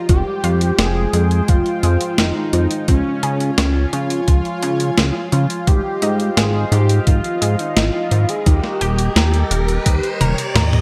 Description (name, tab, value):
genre	synthwave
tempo	86 BPM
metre	4/4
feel	straight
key	F minor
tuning	A4 = 440 Hz
part	unison lead	melody	0.0-10.6 s	Db4 to Ab4	-25 LUFS	equal	delay
part	chorused pulse-width pad	sustained chords	0.0-10.8 s	Ab3 to Bb5	-28 LUFS	equal	sidechain pumping
part	analog pluck	arpeggios	0.0-10.8 s	Eb3 to Db5	-30 LUFS	equal	chorus, delay
part	chorused synth bass	bass	0.1-10.8 s	Eb1 to Db3	-20 LUFS	equal	none
part	clean 12-bit digital drum machine	drums	0.1-10.8 s	hi-hat, snare drum, toms	-22 LUFS	equal	gated reverb
part	electronic kick drum	drums	0.1-10.0 s	none	-16 LUFS	equal	none
part	riser	sound effects	7.4-10.8 s	none	-32 LUFS	equal	none
room	light reverb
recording	bright 1980s-style digital production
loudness	-17 LUFS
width	mono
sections	0.0-10.8 A section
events	riser 7.4-10.8; drum fill 10.2-10.8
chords	0.1 Fmadd9; 2.9 Db; 5.7 Ab6; 8.5 Eb